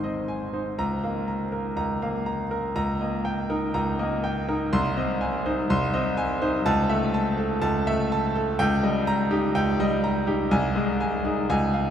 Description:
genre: classical, virtuoso piano study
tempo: 123 BPM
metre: 4/4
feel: rubato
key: Ab major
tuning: A4 = 440 Hz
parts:
  - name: clear grand piano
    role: solo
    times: 0.0-11.9 s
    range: Ab1 to C6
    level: -22 LUFS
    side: equal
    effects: none
room: wet cathedral reverb, RT60 5.9 s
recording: in a vast, echoing space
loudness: -22 LUFS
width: side -9 dB against mid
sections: 0.0-11.9 A section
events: none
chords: 0.0 Ab; 0.8 Bbm/Db; 2.8 Eb7/Db; 4.7 Ab/C; 6.7 A/C#; 8.6 Eb7/Db; 10.5 Ab/C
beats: 0.29 | 0.78 1.27 1.77 2.26 | 2.75 3.25 3.74 4.24 | 4.73 5.21 5.70 6.18 | 6.66 7.14 7.63 8.11 | 8.60 9.07 9.56 10.04 | 10.52 11.01 11.50

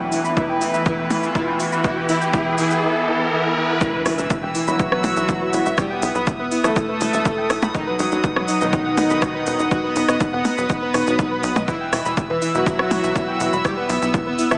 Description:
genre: melodic techno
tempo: 122 BPM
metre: 4/4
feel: straight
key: unclear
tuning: A4 = 439 Hz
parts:
  - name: soft supersaw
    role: melody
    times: 0.0-14.6 s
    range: D#3 to B4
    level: -23 LUFS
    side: equal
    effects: cassette tape, sidechain pumping, analog delay
  - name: rich chamber string section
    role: sustained chords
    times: 0.0-14.6 s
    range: E2 to E6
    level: -27 LUFS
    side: equal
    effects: sidechain pumping
  - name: soft round pluck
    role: arpeggios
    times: 0.0-14.6 s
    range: D#4 to B5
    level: -24 LUFS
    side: equal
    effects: lush chorus, cassette tape, sidechain pumping, analog delay
  - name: analog synth brass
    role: stabs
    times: 0.0-14.6 s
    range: B2 to E4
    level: -26 LUFS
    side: equal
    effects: chorus, sidechain pumping, analog delay
  - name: riser and impact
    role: sound effects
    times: 0.0-5.8 s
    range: none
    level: -26 LUFS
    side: equal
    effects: none
  - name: techno drum kit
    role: drums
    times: 0.1-14.6 s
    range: hi-hat, percussion blips, rim click, shaker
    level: -26 LUFS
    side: equal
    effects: overdrive, sidechain pumping on perc, sidechain pumping on hats
  - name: electronic kick drum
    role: drums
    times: 0.4-14.2 s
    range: none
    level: -24 LUFS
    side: equal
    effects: none
  - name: tight sequencer bass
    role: bass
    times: 4.1-14.6 s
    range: E1 to B1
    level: -27 LUFS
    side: equal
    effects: sidechain pumping
room: wet cathedral reverb, RT60 4.2 s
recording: dreamy mix soaked in reverb, small speaker sound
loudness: -17 LUFS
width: side -31 dB against mid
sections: 0.0-3.8 A section; 3.8-14.6 B section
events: build-up 0.0-3.8; riser 0.0-3.8; filter sweep on analog polysynth 0.0-3.8; drop 3.8-14.6; impact 3.8-5.8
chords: 0.0 Asus2/E; 3.8 Em; 7.7 B/E; 11.7 Em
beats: 0.37 0.86 1.35 | 1.84 2.33 2.83 3.32 | 3.81 4.30 4.79 5.29 | 5.78 6.27 6.76 7.25 | 7.75 8.24 8.73 9.22 | 9.71 10.20 10.70 11.19 | 11.68 12.17 12.66 13.15 | 13.65 14.14

